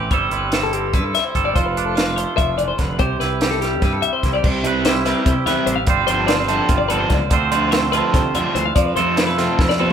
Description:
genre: math rock and midwest emo.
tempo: 291 BPM (eighths).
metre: 7/8.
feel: straight.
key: C major.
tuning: A4 = 439 Hz.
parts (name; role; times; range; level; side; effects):
twangy electric guitar; accompaniment; 0.0-9.9 s; A2 to C5; -21 LUFS; right 6 dB; none.
twelve-string electric guitar; arpeggios; 0.0-9.9 s; G4 to F5; -22 LUFS; left 6 dB; none.
fuzz fingered electric bass; bass; 0.0-9.9 s; F1 to D3; -25 LUFS; equal; overdrive.
compact cocktail drum kit; drums; 0.1-9.9 s; crash cymbal, hi-hat, kick drum, snare drum, toms; -20 LUFS; equal; none.
overdriven electric guitar; riff; 4.6-9.9 s; C3 to E4; -23 LUFS; left 1 dB; none.
room: moderate large studio reverb, RT60 0.9 s.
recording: band playing live in one room.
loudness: -16 LUFS.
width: side -8 dB against mid.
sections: 0.0-4.4 A section; 4.4-9.9 B section.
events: drum fill 9.6-9.9.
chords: 0.1 C6/G; 1.6 F6; 3.0 Cmaj7; 5.9 G7sus4; 7.3 Dm7; 8.8 Fmaj7.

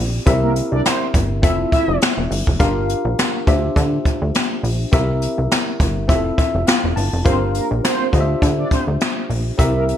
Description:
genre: early-eighties boogie funk.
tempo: 103 BPM.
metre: 4/4.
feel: swing 56% on 16ths.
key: unclear.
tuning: A4 = 440 Hz.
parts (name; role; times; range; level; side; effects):
tine electric piano; accompaniment; 0.0-10.0 s; C4 to A5; -22 LUFS; left 2 dB; analog chorus.
plucky analog bass; bass; 0.0-9.9 s; E1 to D3; -20 LUFS; equal; none.
jazz brush drum kit; drums; 0.3-10.0 s; hi-hat, kick drum, snare drum; -18 LUFS; equal; gated reverb.
mellow synth brass; second line; 0.4-2.0, 7.2-9.9 s; Bb3 to E5; -23 LUFS; right 2 dB; chorus.
room: light reverb, small room ambience.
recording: bright 1980s-style digital production.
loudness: -15 LUFS.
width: side -10 dB against mid.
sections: 0.0-10.0 A section.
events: tine electric piano fill 6.1-7.3.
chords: 0.3 C7; 1.4 Fmaj7; 2.6 Gm7; 3.5 Dm11; 4.9 C7; 6.1 Fmaj7; 7.3 Gm7; 8.1 Dm11.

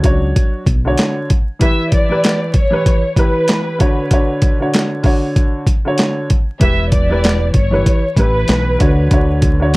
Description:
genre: hip hop, boom-bap hip-hop.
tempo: 96 BPM.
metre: 4/4.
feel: swing 59% on 16ths.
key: unclear.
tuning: A4 = 439 Hz.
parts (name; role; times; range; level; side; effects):
dark upright piano; accompaniment; 0.0-9.8 s; D3 to C#5; -18 LUFS; equal; cassette tape, high-pass filter, low-pass filter.
fingered electric bass; bass; 0.0-0.9, 6.6-9.8 s; E1 to D2; -16 LUFS; equal; none.
boom bap sampler-style drum kit; drums; 0.0-9.8 s; handclaps, hi-hat, kick drum, snare drum; -14 LUFS; equal; overdrive.
warm studio violin section; melody; 1.6-9.1 s; B4 to E5; -20 LUFS; equal; high-pass filter, low-pass filter, tape echo.
room: little or no reverb.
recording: dry, gritty hardware recording, vinyl crackle.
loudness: -12 LUFS.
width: side -22 dB against mid.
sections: 0.0-9.8 A section.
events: none.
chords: 0.0 Dmaj7; 1.6 Em; 3.8 Dmaj7; 6.6 Em; 8.8 Dmaj7.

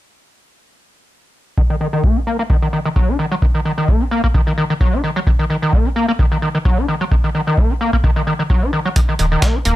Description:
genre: acid house.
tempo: 130 BPM.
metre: 4/4.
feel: swing 54% on 16ths.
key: Eb minor pentatonic.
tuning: A4 = 439 Hz.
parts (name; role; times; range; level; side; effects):
overdriven acid bass; riff; 1.6-9.8 s; Eb3 to Eb4; -18 LUFS; equal; tube saturation, analog chorus, ping-pong delay.
electronic kick drum; drums; 1.6-9.5 s; none; -16 LUFS; equal; none.
breakbeat sampler-style drum kit; drums; 9.0-9.8 s; hi-hat, snare drum; -21 LUFS; right 2 dB; sidechain pumping on hats, high-pass filter on hats, high-pass filter on snare.
round analog bass; bass; 9.2-9.8 s; Eb1; -16 LUFS; equal; sidechain pumping.
room: light reverb.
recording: none.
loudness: -14 LUFS.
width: side -15 dB against mid.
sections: 1.6-9.8 A section.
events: filter sweep on acid bass 1.6-9.8.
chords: 1.6 Eb5.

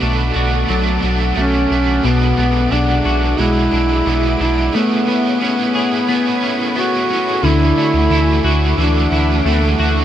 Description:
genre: dream pop.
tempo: 89 BPM.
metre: 4/4.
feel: straight.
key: unclear.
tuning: A4 = 440 Hz.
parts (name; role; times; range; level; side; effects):
warm duduk; melody; 0.0-9.8 s; B3 to F#4; -18 LUFS; equal; digital delay.
overdriven electric guitar; accompaniment; 0.0-10.0 s; B2 to C#5; -21 LUFS; right 4 dB; tremolo, ensemble chorus.
shimmering ambient pad; sustained chords; 0.0-10.0 s; A3 to D6; -23 LUFS; left 1 dB; chorus, built-in reverb.
semi-hollow electric guitar; arpeggios; 0.0-10.0 s; B2 to G#4; -20 LUFS; left 2 dB; analog chorus, digital delay.
sub bass with octave; bass; 0.0-10.0 s; B1 to D2; -18 LUFS; equal; none.
worn celesta; texture; 7.8-10.0 s; D5 to G#5; -34 LUFS; left 2 dB; none.
room: moderate huge ambient reverb, RT60 6.4 s.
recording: none.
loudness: -13 LUFS.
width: side -10 dB against mid.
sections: 0.0-7.4 A section; 7.4-10.0 B section.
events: none.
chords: 0.0 Bm7; 2.0 E9/B; 4.7 Amaj9; 7.4 Dadd9.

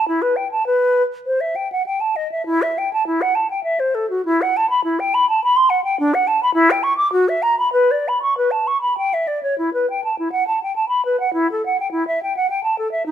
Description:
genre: classical, baroque-style fantasia for unaccompanied flute.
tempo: 87-111 BPM.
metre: 3/4.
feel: rubato.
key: E minor, B minor from 6.0 s, E minor from 9.6 s.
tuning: A4 = 440 Hz.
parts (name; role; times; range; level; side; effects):
hollow concert flute; solo; 0.0-13.1 s; D4 to D6; -16 LUFS; equal; none.
room: moderate stone room reverb, RT60 1.1 s.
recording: minimal, uncompressed stereo recording.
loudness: -16 LUFS.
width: side -10 dB against mid.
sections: 0.0-9.6 A section; 9.6-13.1 A section.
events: none.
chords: none.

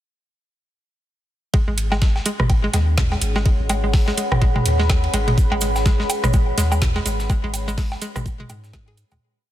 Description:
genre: minimal techno.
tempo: 125 BPM.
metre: 4/4.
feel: swing 59% on 16ths.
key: G# minor.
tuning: A4 = 442 Hz.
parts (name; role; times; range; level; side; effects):
hollow square pluck; riff; 1.5-9.1 s; G#3 to G#4; -27 LUFS; equal; chorus, sidechain pumping, ping-pong delay.
breakbeat sampler-style drum kit; drums; 1.5-9.2 s; hi-hat, ride cymbal, snare drum; -33 LUFS; right 2 dB; sidechain pumping on cymbals, high-pass filter on cymbals, studio reverb, high-pass filter on snare, sidechain pumping on hats, high-pass filter on hats.
electronic kick drum; drums; 1.5-8.8 s; none; -18 LUFS; equal; overdrive, studio reverb.
booming analog drum machine; percussion; 1.5-9.2 s; rim click, toms, woodblock; -26 LUFS; equal; overdrive, studio reverb, ping-pong delay.
deep dark ambient pad; texture; 2.8-9.2 s; G#4 to B5; -27 LUFS; equal; chorus, built-in reverb, sidechain pumping.
punchy sub bass; bass; 1.7-9.2 s; G#1 to G#2; -22 LUFS; equal; sidechain pumping.
garage drum kit; drums; 1.8-9.1 s; hi-hat, snare drum; -27 LUFS; right 2 dB; overdrive, studio reverb.
cabasa; percussion; 5.4-9.2 s; none; -32 LUFS; right 5 dB; none.
room: light reverb.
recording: dense, heavily limited modern master.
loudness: -17 LUFS.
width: side -13 dB against mid.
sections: 1.5-9.2 drop.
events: drop 1.5-9.2; fade-out 6.7-9.2.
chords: 1.5 G#m.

